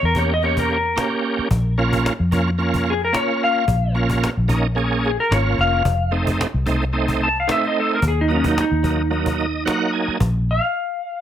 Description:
straight-eighth soul blues; 110 BPM; 4/4; swing 54% on 16ths; Bb minor; A4 = 440 Hz
clean lap steel guitar; melody; 0.0-11.2 s; Db4 to A5; -21 LUFS; left 1 dB; plate reverb
vintage muted fingered electric bass; bass; 0.0-10.6 s; F1 to F2; -21 LUFS; equal
cajon; drums; 0.1-10.3 s; -26 LUFS; left 1 dB
bright tonewheel organ; accompaniment; 0.2-10.2 s; Gb3 to Ab5; -22 LUFS; right 3 dB; slow rotary speaker, overdrive, chorus vibrato, plate reverb
light reverb; -17 LUFS; side -10 dB against mid
0.0-11.2 A section
electric slide guitar solo 0.0-11.2; tonewheel organ fill 9.1-10.2
0.0 Edim7; 1.5 Bbm; 5.9 F7; 8.0 Ebm; 10.2 Bb5
0.42 0.96 | 1.51 2.05 2.59 3.14 | 3.68 4.22 4.77 5.31 | 5.85 6.40 6.94 7.48 | 8.03 8.57 9.12 9.66 | 10.20 10.75

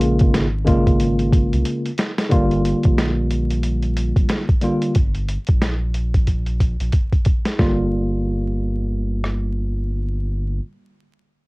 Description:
hip hop, boom-bap hip-hop; 91 BPM; 4/4; swing 59% on 16ths; G phrygian; A4 = 440 Hz
tine electric piano; accompaniment; 0.0-10.6 s; Db3 to F4; -21 LUFS; equal; overdrive, fast stereo tremolo, cassette tape, high-pass filter, low-pass filter, plate reverb
sub bass with octave; bass; 0.0-10.6 s; G1 to C2; -22 LUFS; equal
boom bap sampler-style drum kit; drums; 0.0-9.4 s; hi-hat, kick drum, rim click, snare drum; -18 LUFS; equal; cassette tape
light reverb; home recording on cassette, vinyl crackle; -17 LUFS; side -24 dB against mid
0.0-2.3 A section; 2.3-7.6 B section; 7.6-10.2 C section
drum fill 1.7-2.3, 6.3-7.6; filter sweep on tine electric piano 2.3-7.6
0.0 Bbm7; 2.3 Gm7
0.34 1.00 1.66 | 2.32 2.98 3.64 4.30 | 4.96 5.61 6.27 6.93 | 7.59 8.25 8.91 9.57

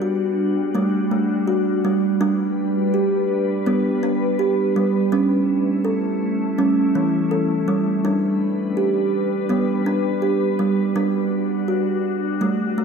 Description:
world meditative, meditative tuned percussion; 82 BPM; 4/4; swing 54% on 16ths; G lydian; A4 = 441 Hz
glassy FM pad; sustained chords; 0.0-12.8 s; G3 to B4; -25 LUFS; left 4 dB; ensemble chorus, built-in reverb
kalimba; arpeggios; 0.0-12.8 s; E3 to A4; -19 LUFS; right 2 dB
wet lush hall reverb, RT60 2.5 s; -18 LUFS; side -6 dB against mid
0.0-12.8 A section
0.0 D/G; 2.2 G; 5.1 A/G; 8.0 G; 10.9 D/G
0.02 0.75 1.48 | 2.21 2.94 3.67 4.39 | 5.12 5.85 6.58 7.31 | 8.04 8.77 9.49 10.22 | 10.95 11.68 12.40

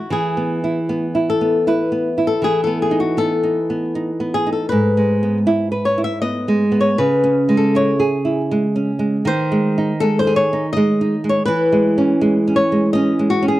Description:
romantic duo for nylon-string guitar and classical guitar; 79 BPM; 3/4; uneven beats, rubato; E major, C# minor from 9.3 s; A4 = 440 Hz
flamenco guitar; melody; 0.0-13.6 s; F#4 to E5; -19 LUFS; left 2 dB
nylon-string guitar; accompaniment; 0.0-13.6 s; G#2 to B4; -17 LUFS; right 1 dB
small room ambience; dry, close 1970s-style studio recording; -15 LUFS; side -15 dB against mid
0.1-13.6 A section
0.1 E; 2.4 B7/E; 4.7 E/G#; 7.0 C#m; 9.3 G#/D#; 11.5 C#m/E
| 0.10 0.89 1.66 | 2.43 3.18 3.94 | 4.71 5.47 6.22 | 6.99 7.76 8.51 | 9.26 10.01 10.73 | 11.46 12.20 12.94

